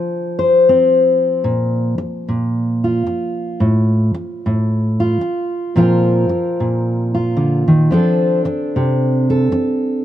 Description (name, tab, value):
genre	folk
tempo	112 BPM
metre	4/4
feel	swing 57% on 8ths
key	Bb major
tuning	A4 = 439 Hz
part	fingerpicked steel-string acoustic guitar	solo	0.0-10.0 s	A2 to C5	-14 LUFS	equal	none
room	small room ambience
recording	dry, close 1970s-style studio recording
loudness	-14 LUFS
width	side -11 dB against mid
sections	0.0-1.4 A section; 1.4-10.0 B section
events	none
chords	0.0 F5; 1.4 Bb5; 3.6 F/A; 5.8 Bbsus2; 7.9 F6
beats	0.38 0.91 | 1.45 1.99 2.52 3.06 | 3.60 4.13 4.67 5.21 | 5.75 6.29 6.83 7.37 | 7.91 8.44 8.98 9.52